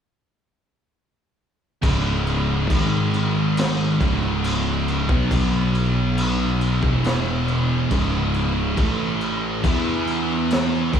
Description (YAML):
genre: stoner and doom metal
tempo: 69 BPM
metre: 4/4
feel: straight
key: C# minor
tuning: A4 = 441 Hz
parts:
  - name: scooped high-gain guitar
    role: riff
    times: 1.8-11.0 s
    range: C#2 to E4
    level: -28 LUFS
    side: left 1 dB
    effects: distortion
  - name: thick fuzz guitar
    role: riff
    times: 1.8-11.0 s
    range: C#2 to E4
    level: -25 LUFS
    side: left 9 dB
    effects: distortion
  - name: thick fuzz guitar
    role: riff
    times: 1.8-11.0 s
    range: C#2 to E4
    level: -24 LUFS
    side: right 8 dB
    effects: distortion, slapback echo
  - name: fuzz fingered electric bass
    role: bass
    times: 1.8-11.0 s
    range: C#1 to E2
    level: -26 LUFS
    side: left 1 dB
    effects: overdrive
  - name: raw garage drum kit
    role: drums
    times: 1.8-11.0 s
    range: crash cymbal, kick drum, snare drum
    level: -24 LUFS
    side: equal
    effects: none
room: light reverb, studio ambience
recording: live gig heard through the venue's PA, club reverb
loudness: -18 LUFS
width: side -8 dB against mid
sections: 1.8-11.0 A section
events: none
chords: 1.8 C#5; 2.7 G#5; 4.0 C#5; 5.1 B5; 6.8 E5; 7.9 C#5; 8.8 A5; 9.6 E5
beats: | 1.83 2.69 3.56 4.43 | 5.30 6.17 7.03 7.90 | 8.77 9.63 10.49